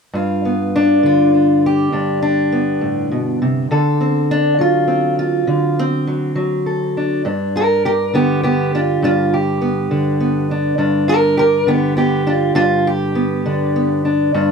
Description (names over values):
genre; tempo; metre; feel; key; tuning
acoustic country blues, solo or duo; 68 BPM (dotted quarters); 12/8; straight; G major; A4 = 439 Hz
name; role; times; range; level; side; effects
fingerpicked steel-string acoustic guitar; solo; 0.1-14.5 s; G2 to Bb4; -14 LUFS; equal; none
room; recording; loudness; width
light reverb; close, detailed microphones; -14 LUFS; side -5 dB against mid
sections
0.2-7.3 A section; 7.3-14.5 B section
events
none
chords
0.2 G7; 3.7 D7; 7.3 G